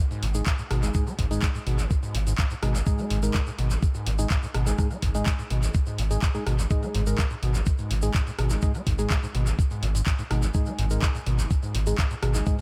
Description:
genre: acid house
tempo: 125 BPM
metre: 4/4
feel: straight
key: G# minor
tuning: A4 = 441 Hz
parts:
  - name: overdriven acid bass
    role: riff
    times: 0.0-12.6 s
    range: G#1 to G#3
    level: -33 LUFS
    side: equal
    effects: subtle chorus, sidechain pumping, dub echo
  - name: punchy analog drum machine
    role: drums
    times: 0.1-12.6 s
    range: handclaps, hi-hat, rim click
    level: -36 LUFS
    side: equal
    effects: dub echo
  - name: tube shaker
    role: percussion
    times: 0.1-12.6 s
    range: none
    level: -43 LUFS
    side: equal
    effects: dub echo
  - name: round analog bass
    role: bass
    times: 0.2-12.4 s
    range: G#1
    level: -28 LUFS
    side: equal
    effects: sidechain pumping
  - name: percussive organ stab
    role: stabs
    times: 0.3-12.6 s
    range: G#3 to A#4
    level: -36 LUFS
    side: equal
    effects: chorus, dub echo
  - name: electronic kick drum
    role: drums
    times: 0.5-12.6 s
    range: none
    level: -27 LUFS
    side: equal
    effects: none
room: light reverb, digital ambience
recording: echo-heavy mix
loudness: -25 LUFS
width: mono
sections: 0.0-12.6 A section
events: none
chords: 0.0 G#5

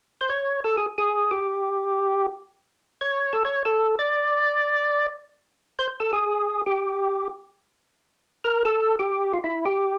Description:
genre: jazz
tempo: 180 BPM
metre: 4/4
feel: swing 62% on 8ths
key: unclear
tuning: A4 = 440 Hz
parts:
  - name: percussive tonewheel organ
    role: solo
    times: 0.2-10.0 s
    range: E4 to D5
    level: -24 LUFS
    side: equal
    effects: slow rotary speaker, overdrive
room: moderate studio ambience, RT60 0.5 s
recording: none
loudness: -24 LUFS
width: mono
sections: 0.1-5.4 A section; 5.4-10.0 B section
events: none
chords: none

